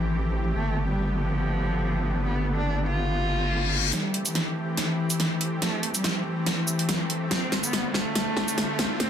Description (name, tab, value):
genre	heavy wobble dubstep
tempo	142 BPM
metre	4/4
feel	swing 55% on 16ths, half-time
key	A minor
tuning	A4 = 440 Hz
part	dark cello	melody	0.0-9.1 s	E3 to F4	-29 LUFS	left 1 dB	ping-pong delay
part	supersaw pad	sustained chords	0.0-9.1 s	D3 to G4	-32 LUFS	equal	none
part	wobble bass	bass	0.0-3.9 s	G1 to A1	-26 LUFS	equal	chorus, overdrive
part	reverse cymbal and riser	sound effects	3.3-9.1 s	none	-33 LUFS	left 4 dB	none
part	dubstep drum kit	drums	3.9-9.1 s	hi-hat, shaker, snare drum	-26 LUFS	equal	overdrive, low-pass filter on snare, low-pass filter on hats, low-pass filter on perc, low-pass filter on room
room	light reverb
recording	dense, heavily limited modern master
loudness	-24 LUFS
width	side -9 dB against mid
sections	0.0-3.9 A section; 3.9-9.1 B section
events	reverse cymbal 3.3-3.9; build-up 3.9-9.1; drum fill 3.9-9.1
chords	0.0 Am7; 0.5 Gadd9; 3.9 Am7; 7.3 Dm7